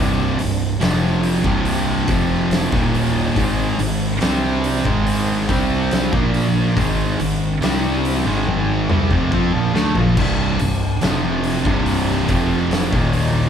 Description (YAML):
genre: stoner and doom metal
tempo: 70 BPM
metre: 4/4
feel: straight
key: C minor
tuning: A4 = 440 Hz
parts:
  - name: high-gain distorted guitar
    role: riff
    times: 0.0-13.5 s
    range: C2 to C4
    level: -23 LUFS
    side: left 1 dB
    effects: distortion
  - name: thick fuzz guitar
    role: riff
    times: 0.0-13.5 s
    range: C2 to C4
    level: -24 LUFS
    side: left 7 dB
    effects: distortion
  - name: thick fuzz guitar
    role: riff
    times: 0.0-13.5 s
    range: C2 to C4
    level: -21 LUFS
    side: right 6 dB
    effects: distortion
  - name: fuzz fingered electric bass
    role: bass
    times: 0.0-13.5 s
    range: C1 to F2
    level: -25 LUFS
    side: equal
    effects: overdrive
  - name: oversized low-tuned drum kit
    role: drums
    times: 0.4-13.3 s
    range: crash cymbal, hi-hat, kick drum, snare drum, toms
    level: -22 LUFS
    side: left 1 dB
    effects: none
room: moderate large studio reverb, RT60 0.9 s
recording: band playing live in one room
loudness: -16 LUFS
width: side -8 dB against mid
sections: 0.0-13.5 A section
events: drum fill 8.5-10.2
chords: 0.0 Cm; 3.4 Ab5; 10.2 Cm